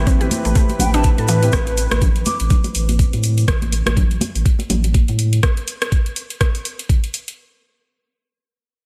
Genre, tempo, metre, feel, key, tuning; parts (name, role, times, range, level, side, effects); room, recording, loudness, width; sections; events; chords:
afro house; 123 BPM; 4/4; swing 57% on 16ths; A minor; A4 = 440 Hz
warm analog pad; sustained chords; 0.0-3.5 s; E3 to B4; -29 LUFS; equal; subtle chorus, sidechain pumping
felt-muted upright piano; stabs; 0.0-1.5 s; C4 to B4; -30 LUFS; equal; sidechain pumping, analog delay
warm sub bass; bass; 0.0-5.4 s; A1 to A2; -21 LUFS; equal; sidechain pumping
mallet-like synth pluck; arpeggios; 0.1-1.4 s; E3 to A4; -26 LUFS; equal; chorus, sidechain pumping, analog delay
afro-pop drum kit; drums; 0.1-7.4 s; hi-hat, rim click; -27 LUFS; equal
electronic kick drum; drums; 0.1-7.0 s; -18 LUFS; equal
congas; percussion; 0.1-5.2 s; -27 LUFS; equal
tube shaker; percussion; 0.1-3.5 s; -33 LUFS; equal
breathy mellow silver concert flute; melody; 0.8-2.4 s; G5 to D6; -29 LUFS; equal; analog delay
light reverb, small room ambience; lossy compression artefacts; -18 LUFS; mono
0.0-7.4 A section
drop 0.0-7.4
0.0 Am7